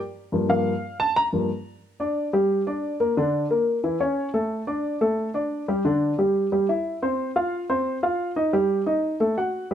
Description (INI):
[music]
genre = jazz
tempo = 179 BPM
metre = 4/4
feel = straight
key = G minor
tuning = A4 = 440 Hz
[part]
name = dark baby grand piano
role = solo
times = 0.3-9.7 s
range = G2 to Bb5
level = -22 LUFS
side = equal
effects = none
[sound]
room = light reverb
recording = close, detailed microphones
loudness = -22 LUFS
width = side -9 dB against mid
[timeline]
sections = 0.0-1.8 A section; 1.8-9.7 B section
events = grand piano solo 0.0-1.8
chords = 0.0 Gm7; 1.8 Gm; 3.2 Bb/D; 3.8 A; 4.5 D5; 5.8 G5; 6.5 C; 7.2 F5; 8.5 Eb/G; 9.2 F#m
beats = 0.16 | 0.50 0.83 1.16 1.50 | 1.83 2.17 2.50 2.83 | 3.17 3.50 3.84 4.17 | 4.51 4.84 5.18 5.51 | 5.85 6.18 6.52 6.85 | 7.19 7.53 7.86 8.20 | 8.53 8.87 9.21 9.54